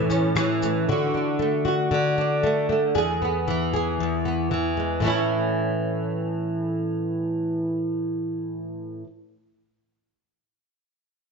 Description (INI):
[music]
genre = acoustic pop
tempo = 116 BPM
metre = 4/4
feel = swing 60% on 16ths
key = A major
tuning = A4 = 441 Hz
[part]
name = flamenco guitar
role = accompaniment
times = 0.0-9.1 s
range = E2 to G#4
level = -22 LUFS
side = equal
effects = double-tracked left and right
[part]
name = shaker and rim click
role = drums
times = 0.1-0.8 s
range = none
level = -31 LUFS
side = left 2 dB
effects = none
[sound]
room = moderate plate reverb, RT60 1.4 s, small room ambience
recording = dreamy mix soaked in reverb, nothing above 7.6 kHz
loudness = -22 LUFS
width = side -4 dB against mid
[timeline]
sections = 0.0-5.0 A section; 5.0-9.2 B section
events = none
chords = 0.0 A; 0.9 D; 3.0 E; 5.0 A